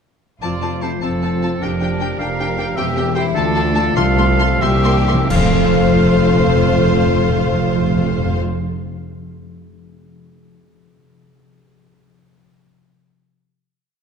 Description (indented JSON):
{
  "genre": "classical, dramatic, fast romantic movement for symphony orchestra",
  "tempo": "84-106 BPM (dotted quarters)",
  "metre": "6/8",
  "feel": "rubato",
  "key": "F major",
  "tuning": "A4 = 440 Hz",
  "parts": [
    { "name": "rich symphonic violin section", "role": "melody", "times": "0.4-8.4 s", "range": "C5 to C6", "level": "-24 LUFS", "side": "left 4 dB", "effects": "none" },
    { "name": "clear oboe", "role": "second line", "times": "0.4-8.4 s", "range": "A4 to F5", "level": "-24 LUFS", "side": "right 2 dB", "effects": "none" },
    { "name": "clear symphonic violin section", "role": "second line", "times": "0.4-8.4 s", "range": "C4 to F5", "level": "-26 LUFS", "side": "left 2 dB", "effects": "none" },
    { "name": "clear symphonic viola section", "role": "accompaniment", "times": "0.4-8.4 s", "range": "A3 to G4", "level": "-25 LUFS", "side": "equal", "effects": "none" },
    { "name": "mellow French horn section", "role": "sustained chords", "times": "0.4-8.4 s", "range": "A3 to A4", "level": "-23 LUFS", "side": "left 7 dB", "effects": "none" },
    { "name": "concert harp", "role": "arpeggios", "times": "0.4-9.1 s", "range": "C3 to F5", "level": "-24 LUFS", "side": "left 7 dB", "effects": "none" },
    { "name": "rich symphonic double bass section", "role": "bass", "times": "0.4-8.4 s", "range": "E1 to D2", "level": "-23 LUFS", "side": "right 3 dB", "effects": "none" },
    { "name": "warm symphonic cello section", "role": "bass", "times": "0.4-8.4 s", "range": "C2 to F2", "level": "-21 LUFS", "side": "right 5 dB", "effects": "none" },
    { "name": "timpani", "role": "percussion", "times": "1.6-8.4 s", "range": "F2 to C3", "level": "-22 LUFS", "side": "equal", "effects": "none" },
    { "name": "cymbal swell, clash cymbals and concert bass drum", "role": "percussion", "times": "2.8-6.1 s", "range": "none", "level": "-26 LUFS", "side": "equal", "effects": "none" }
  ],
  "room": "moderate scoring stage reverb, RT60 2.0 s",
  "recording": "dark, warm production",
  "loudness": "-14 LUFS",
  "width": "side -6 dB against mid",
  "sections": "0.4-5.3 A section; 5.3-7.9 final chord",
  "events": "slowing down 2.2-5.3; timpani fill 4.6-5.3; band accent 5.3-5.7",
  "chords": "0.4 F; 1.6 Gm7/F; 2.8 C/E; 3.4 Dm; 4.0 F/C; 4.6 C7; 5.3 F"
}